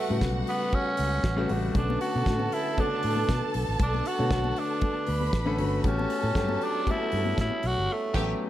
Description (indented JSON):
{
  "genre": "disco",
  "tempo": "117 BPM",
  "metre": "4/4",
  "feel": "straight",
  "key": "B minor",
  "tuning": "A4 = 440 Hz",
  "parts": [
    { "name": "raspy tenor saxophone", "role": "melody", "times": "0.0-8.4 s", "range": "A3 to F#4", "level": "-30 LUFS", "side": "right 1 dB", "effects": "none" },
    { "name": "warm studio violin section", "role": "second line", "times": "0.0-8.3 s", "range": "F#4 to B5", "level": "-34 LUFS", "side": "right 3 dB", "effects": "none" },
    { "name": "warm grand piano", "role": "accompaniment", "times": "0.0-8.5 s", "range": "C#3 to C#5", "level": "-32 LUFS", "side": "left 3 dB", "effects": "none" },
    { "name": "mellow French horn section", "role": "sustained chords", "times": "0.0-8.5 s", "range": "D3 to C#5", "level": "-38 LUFS", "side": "right 2 dB", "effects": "none" },
    { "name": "fingered electric bass", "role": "bass", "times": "0.1-8.3 s", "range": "G1 to B2", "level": "-29 LUFS", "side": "equal", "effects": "none" },
    { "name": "damped 70s drum kit", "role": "drums", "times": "0.2-8.3 s", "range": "crash cymbal, hi-hat, kick drum, snare drum", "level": "-31 LUFS", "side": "equal", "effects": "none" },
    { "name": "congas", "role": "percussion", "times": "1.8-7.8 s", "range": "none", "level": "-38 LUFS", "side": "left 6 dB", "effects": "none" }
  ],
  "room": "light reverb, studio reverb",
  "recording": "dark, warm production",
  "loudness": "-24 LUFS",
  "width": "side -13 dB against mid",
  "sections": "0.0-8.5 A section",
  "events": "band accent 7.9-8.5",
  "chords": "0.0 A13; 1.7 Bm9; 5.8 A13"
}